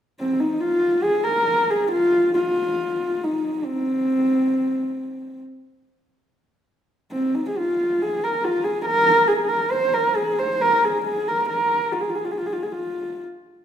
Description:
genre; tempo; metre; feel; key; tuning
mongolian traditional; 69 BPM; 4/4; straight; F yu mode; A4 = 441 Hz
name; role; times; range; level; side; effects
dark horsehead fiddle; solo; 0.2-13.2 s; C4 to C5; -19 LUFS; equal; none
room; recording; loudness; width
wet recital hall reverb, RT60 1.5 s; minimal, uncompressed stereo recording; -19 LUFS; side -9 dB against mid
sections
0.2-13.6 A section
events
none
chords
none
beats
| 0.19 1.05 1.92 2.78 | 3.65 4.52 5.38 6.25 | 7.12 7.99 8.86 9.73 | 10.60 11.47 12.34 13.21

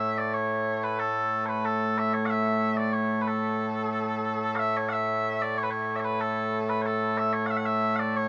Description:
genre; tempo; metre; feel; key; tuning
scottish traditional, Scottish pipe music; 92 BPM; 4/4; straight; A major; A4 = 440 Hz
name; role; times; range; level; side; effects
mellow small bagpipes; solo; 0.0-8.3 s; A2 to F#5; -27 LUFS; equal; none
room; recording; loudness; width
moderate huge ambient reverb, RT60 6.9 s; none; -27 LUFS; mono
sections
0.0-4.9 A section; 4.9-8.3 A section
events
none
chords
none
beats
0.34 0.99 1.65 | 2.30 2.95 3.60 4.25 | 4.91 5.56 6.21 6.86 | 7.51 8.17

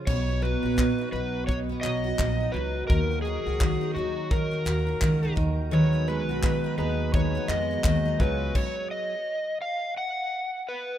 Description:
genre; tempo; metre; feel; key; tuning
acoustic pop; 85 BPM; 4/4; swing 60% on 16ths; unclear; A4 = 440 Hz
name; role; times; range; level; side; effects
picked steel-string acoustic guitar; accompaniment; 0.0-9.1 s; B2 to G#4; -28 LUFS; right 1 dB; double-tracked left and right
overdriven slide guitar; melody; 0.1-11.0 s; F#4 to F#5; -30 LUFS; left 1 dB; tape echo
upright bass; bass; 0.1-8.5 s; A#1 to E#2; -30 LUFS; equal; none
modern studio drum kit; drums; 0.1-8.8 s; crash cymbal, handclaps, kick drum; -27 LUFS; equal; none
warm upright piano; accompaniment; 5.7-8.6 s; G#3 to C#5; -38 LUFS; left 6 dB; none
direct-recorded clean electric guitar; arpeggios; 5.7-9.1 s; F#3 to D#4; -37 LUFS; right 5 dB; tape echo
room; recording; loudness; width
light reverb, small room ambience; rough home demo mix; -24 LUFS; side -11 dB against mid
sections
0.1-11.0 A section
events
stop 8.6-11.0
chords
0.1 B; 2.9 D#m; 5.4 G#m7; 8.2 C#sus4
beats
| 0.07 0.78 1.49 2.19 | 2.90 3.61 4.32 5.02 | 5.73 6.44 7.14 7.85 | 8.56 9.26 9.97 10.67

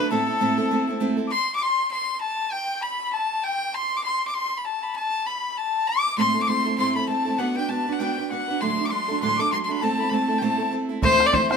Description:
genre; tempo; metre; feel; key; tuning
celtic folk, Celtic reel; 198 BPM; 4/4; swing 57% on 8ths; A dorian; A4 = 440 Hz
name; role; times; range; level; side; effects
bright fiddle; melody; 0.0-11.6 s; A4 to D6; -24 LUFS; left 2 dB; none
rich erhu; second line; 0.0-11.6 s; A4 to D6; -27 LUFS; left 4 dB; none
picked steel-string acoustic guitar; accompaniment; 0.0-1.3, 6.2-11.6 s; D2 to B4; -24 LUFS; right 4 dB; none
bodhran; percussion; 11.0-11.6 s; none; -25 LUFS; right 3 dB; none
room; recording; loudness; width
moderate studio reverb, RT60 0.5 s; minimal, uncompressed stereo recording; -21 LUFS; side -6 dB against mid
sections
0.0-1.3 A section; 1.3-11.0 B section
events
none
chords
0.1 Am; 1.3 N.C.; 6.2 Am; 7.4 Bm; 8.6 D; 9.8 Am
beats
| 0.10 0.40 0.71 1.01 | 1.31 1.62 1.92 2.22 | 2.53 2.83 3.13 3.44 | 3.74 4.05 4.35 4.65 | 4.96 5.26 5.57 5.87 | 6.17 6.48 6.78 7.08 | 7.39 7.69 8.00 8.30 | 8.60 8.91 9.21 9.51 | 9.82 10.12 10.42 10.73 | 11.03 11.33

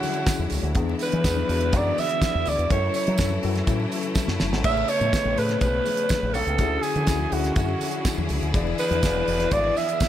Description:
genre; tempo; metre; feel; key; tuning
disco; 123 BPM; 4/4; straight; unclear; A4 = 444 Hz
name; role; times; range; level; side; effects
growling alto saxophone; melody; 0.0-10.1 s; F#4 to E5; -25 LUFS; right 2 dB; none
mellow tine electric piano; accompaniment; 0.0-10.1 s; D3 to D5; -29 LUFS; left 7 dB; medium stereo tremolo
clear studio string section; sustained chords; 0.0-10.1 s; C#3 to G#4; -32 LUFS; equal; none
damped 70s drum kit; drums; 0.0-10.1 s; crash cymbal, hi-hat, kick drum, snare drum; -26 LUFS; equal; none
congas; percussion; 0.0-10.1 s; none; -37 LUFS; left 6 dB; none
tambourine; percussion; 0.0-10.1 s; none; -39 LUFS; right 8 dB; none
fingered electric bass with an envelope filter; bass; 0.4-9.7 s; E1 to F#3; -26 LUFS; equal; none
room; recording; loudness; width
small room ambience; none; -21 LUFS; side -11 dB against mid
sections
0.0-10.1 A section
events
drum fill 4.2-4.7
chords
0.0 Dmaj9#11; 0.8 E7; 2.7 F#m7; 4.7 Amaj9; 6.6 Dmaj9#11; 8.5 E7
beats
0.27 | 0.75 1.24 1.73 2.21 | 2.70 3.19 3.68 4.16 | 4.65 5.14 5.62 6.11 | 6.60 7.08 7.57 8.06 | 8.55 9.03 9.52 10.01

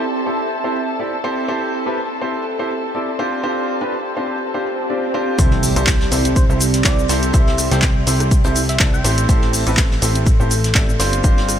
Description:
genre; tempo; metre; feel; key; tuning
piano house; 123 BPM; 4/4; swing 55% on 16ths; C major; A4 = 440 Hz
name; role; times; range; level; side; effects
muted studio violin section; sustained chords; 0.0-5.4 s; A4 to A5; -29 LUFS; equal; sidechain pumping
clear concert grand piano; riff; 0.0-11.6 s; C4 to D5; -21 LUFS; equal; sidechain pumping, diffuse ambient delay
warbly tape-like pad; texture; 0.0-11.6 s; C4 to C6; -26 LUFS; right 2 dB; chorus, built-in reverb, sidechain pumping
swell and impact; sound effects; 4.6-7.3 s; none; -28 LUFS; right 1 dB; none
plucky analog bass; bass; 5.4-11.6 s; G1 to C2; -19 LUFS; equal; sidechain pumping
electronic kick drum; drums; 5.4-11.3 s; none; -15 LUFS; equal; none
punchy analog drum machine; drums; 5.4-11.6 s; handclaps, hi-hat, rim click, shaker; -21 LUFS; equal; low-pass filter on hats, low-pass filter on perc, low-pass filter on snare, low-pass filter on room
vintage brush drum kit; drums; 5.4-11.6 s; hi-hat, shaker, snare drum; -29 LUFS; left 1 dB; none
soft struck synth lead; melody; 6.4-9.1 s; C5 to G5; -29 LUFS; right 1 dB; chorus, phaser, cassette tape, diffuse ambient delay
room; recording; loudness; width
moderate huge ambient reverb, RT60 8.6 s; dreamy mix soaked in reverb; -15 LUFS; side -9 dB against mid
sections
0.0-5.4 A section; 5.4-11.6 B section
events
swell 4.6-5.4; drop 5.4-11.6; impact 5.4-7.3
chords
0.0 C6; 1.2 Am7; 3.2 G7sus4; 5.4 C6; 9.0 Am7; 11.0 G7sus4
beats
0.02 0.51 1.00 | 1.48 1.97 2.46 2.95 | 3.44 3.92 4.41 4.90 | 5.39 5.87 6.36 6.85 | 7.34 7.83 8.31 8.80 | 9.29 9.78 10.26 10.75 | 11.24

